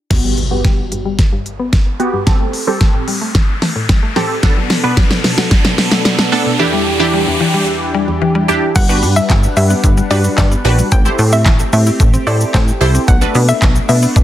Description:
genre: dance-pop.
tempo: 111 BPM.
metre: 4/4.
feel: straight.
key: G major.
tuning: A4 = 441 Hz.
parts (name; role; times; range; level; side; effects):
wide unison pluck; accompaniment; 0.0-13.9 s; B3 to C5; -18 LUFS; right 2 dB; phaser, sidechain pumping, low-pass filter.
mallet-like synth pluck; arpeggios; 0.1-14.2 s; E2 to E4; -22 LUFS; left 3 dB; chorus, sidechain pumping, low-pass filter, digital delay.
pop drum kit; drums; 0.1-14.2 s; crash cymbal, handclaps, hi-hat, kick drum, shaker, snare drum; -14 LUFS; equal; none.
riser and impact; sound effects; 0.1-7.7 s; none; -21 LUFS; equal; none.
warm analog pad; sustained chords; 4.4-14.2 s; E2 to F#5; -20 LUFS; left 1 dB; chorus, sidechain pumping, low-pass filter.
hollow square pluck; melody; 8.8-14.0 s; C5 to G5; -20 LUFS; left 2 dB; chorus, sidechain pumping, digital delay.
plucky analog bass; bass; 8.8-14.2 s; G1 to B2; -13 LUFS; equal; sidechain pumping.
room: digital ambience.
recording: dense, heavily limited modern master.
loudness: -11 LUFS.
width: side -12 dB against mid.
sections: 0.1-8.8 A section; 8.8-14.2 B section.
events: build-up 0.1-8.8; drum fill 0.1-6.6; impact 0.1-2.3; riser 0.1-8.8; filter sweep 0.1-8.8; drop 8.8-14.2.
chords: 0.1 Gmaj7; 2.3 Am7; 4.4 Bm7; 6.6 Em7; 8.8 Gmaj7; 10.9 Am7; 13.1 Bm7.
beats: | 0.11 0.65 1.19 1.73 | 2.27 2.81 3.35 3.89 | 4.43 4.97 5.51 6.05 | 6.59 7.13 7.67 8.21 | 8.76 9.30 9.84 10.38 | 10.92 11.46 12.00 12.54 | 13.08 13.62 14.16.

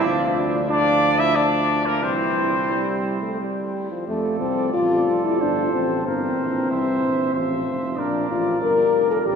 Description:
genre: classical, brass quintet.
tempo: 92 BPM.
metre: 3/4.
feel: rubato.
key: F major.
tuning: A4 = 440 Hz.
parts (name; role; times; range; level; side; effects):
mellow trumpet; second line; 0.0-9.4 s; Bb3 to C5; -26 LUFS; right 4 dB; none.
clear trombone; accompaniment; 0.0-9.4 s; E3 to F4; -29 LUFS; right 2 dB; none.
warm French horn; accompaniment; 0.0-9.4 s; E3 to Bb4; -22 LUFS; left 3 dB; none.
mellow tuba; bass; 0.0-9.4 s; F1 to F2; -28 LUFS; right 1 dB; none.
clear trumpet; melody; 0.7-9.4 s; Bb4 to E5; -26 LUFS; left 3 dB; none.
room: wet cathedral reverb, RT60 4.3 s.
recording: minimal, uncompressed stereo recording.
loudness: -19 LUFS.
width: side -6 dB against mid.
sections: 0.0-4.1 A section; 4.1-9.4 B section.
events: none.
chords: 0.1 Dm; 2.0 C; 4.1 F; 6.0 C7/G; 7.3 F/A; 8.0 Bb.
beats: | 0.06 0.70 1.35 | 2.03 2.72 3.40 | 4.08 4.74 5.39 | 6.05 6.70 7.34 | 7.98 8.62 9.26.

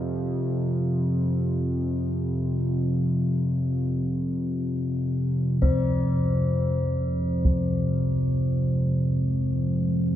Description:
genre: dark ambient drone.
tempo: free time.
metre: none.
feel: none.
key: F minor.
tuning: A4 = 441 Hz.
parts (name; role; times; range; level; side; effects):
analog drone; drone; 0.0-10.2 s; F2 to C3; -23 LUFS; equal; chorus.
deep dark ambient pad; sustained chords; 8.9-10.2 s; Ab3 to C5; -38 LUFS; left 1 dB; none.
taiko ensemble; percussion; 5.6-7.6 s; none; -29 LUFS; equal; none.
quartz singing bowl; texture; 5.6-10.2 s; C4 to C5; -31 LUFS; left 4 dB; none.
room: wet cathedral reverb, RT60 5.7 s.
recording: dark, warm production.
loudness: -23 LUFS.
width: side -11 dB against mid.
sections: 0.0-5.6 A section; 5.6-10.2 B section.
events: none.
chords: 0.0 F5; 5.6 Fm.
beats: free time.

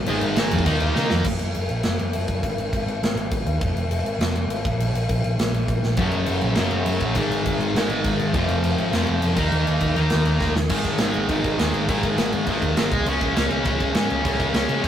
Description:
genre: punk rock.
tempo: 203 BPM.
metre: 4/4.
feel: straight.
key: Ab major.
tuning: A4 = 437 Hz.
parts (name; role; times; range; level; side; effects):
hollow-body short-scale picked electric bass; bass; 0.0-14.9 s; F1 to Db3; -25 LUFS; equal; none.
sludgy distorted guitar; riff; 0.1-1.2, 6.0-14.9 s; F2 to Eb4; -22 LUFS; equal; overdrive.
big rock drum kit; drums; 0.1-14.9 s; crash cymbal, kick drum, snare drum; -24 LUFS; equal; none.
room: light reverb.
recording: rough rehearsal-room recording.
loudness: -19 LUFS.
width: side -10 dB against mid.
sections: 0.0-1.3 A section; 1.3-10.7 B section; 10.7-14.9 C section.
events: drum fill 1.0, 5.8, 10.4; half time 1.3-10.7.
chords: 0.0 Ab5; 0.7 Eb5; 1.3 N.C.; 2.4 Ab5; 3.6 Fm; 4.6 N.C.; 6.0 Gb; 7.2 Ab5; 8.3 F5; 9.4 Eb5; 10.7 Ab5; 12.9 Db5.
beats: | 0.07 0.37 0.66 0.95 | 1.25 1.55 1.84 2.14 | 2.43 2.73 3.02 3.32 | 3.61 3.91 4.21 4.50 | 4.80 5.09 5.39 5.68 | 5.98 6.27 6.57 6.86 | 7.16 7.46 7.75 8.04 | 8.34 8.64 8.93 9.23 | 9.52 9.82 10.11 10.41 | 10.70 11.00 11.29 11.59 | 11.88 12.18 12.47 12.77 | 13.06 13.36 13.65 13.95 | 14.24 14.54 14.83.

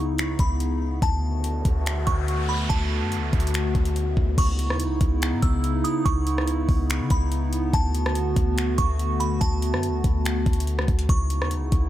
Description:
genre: hip hop, atmospheric cloud-rap.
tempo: 143 BPM.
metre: 4/4.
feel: half-time.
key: C# phrygian.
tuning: A4 = 439 Hz.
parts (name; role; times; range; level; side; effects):
glassy synth bell; melody; 0.0-11.9 s; A5 to E6; -32 LUFS; right 2 dB; chorus, phaser, low-pass filter, tape echo.
hollow soft pad; sustained chords; 0.0-11.9 s; C#3 to F#4; -27 LUFS; left 1 dB; chorus, sidechain pumping.
clean 808-style bass; bass; 0.0-11.9 s; C#2 to C#3; -24 LUFS; equal; none.
smooth R&B drum kit; drums; 0.2-11.8 s; crash cymbal, finger snaps, hi-hat, kick drum, rim click; -25 LUFS; equal; none.
noise sweep; sound effects; 1.3-4.4 s; none; -34 LUFS; right 1 dB; none.
room: little or no reverb.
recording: none.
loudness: -21 LUFS.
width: side -13 dB against mid.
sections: 0.0-4.4 A section; 4.4-11.9 B section.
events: noise sweep 1.3-4.4.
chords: 0.0 C#m9; 1.0 D6; 4.4 C#m9; 7.7 D6; 11.1 C#m9.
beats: 0.18 0.60 | 1.02 1.44 1.86 2.28 | 2.70 3.12 3.54 3.96 | 4.38 4.80 5.22 5.64 | 6.06 6.48 6.90 7.32 | 7.74 8.15 8.57 8.99 | 9.41 9.83 10.25 10.67 | 11.09 11.51.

